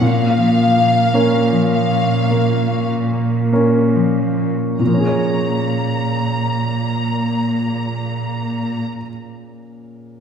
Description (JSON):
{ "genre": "cinematic", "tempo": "46-54 BPM", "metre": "4/4", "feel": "rubato", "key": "Bb minor", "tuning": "A4 = 440 Hz", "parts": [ { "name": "rich studio violin section", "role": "melody", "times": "0.0-8.8 s", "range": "F5 to Bb5", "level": "-22 LUFS", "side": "left 3 dB", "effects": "none" }, { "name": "clear baby grand piano", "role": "accompaniment", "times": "0.0-10.2 s", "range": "Bb2 to Db5", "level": "-20 LUFS", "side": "right 1 dB", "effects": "none" }, { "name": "concert harp", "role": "arpeggios", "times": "0.0-9.2 s", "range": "Bb2 to Db5", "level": "-22 LUFS", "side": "left 1 dB", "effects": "none" }, { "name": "rich studio cello section", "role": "bass", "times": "0.0-8.8 s", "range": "Bb2", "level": "-20 LUFS", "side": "right 2 dB", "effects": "none" } ], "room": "wet scoring stage reverb, RT60 2.1 s", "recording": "heard from further back in the room", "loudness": "-15 LUFS", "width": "side -7 dB against mid", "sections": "0.0-4.8 A section; 4.8-9.8 B section", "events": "slowing down 0.0-4.8", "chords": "0.0 Bbm; 4.8 Bbm7" }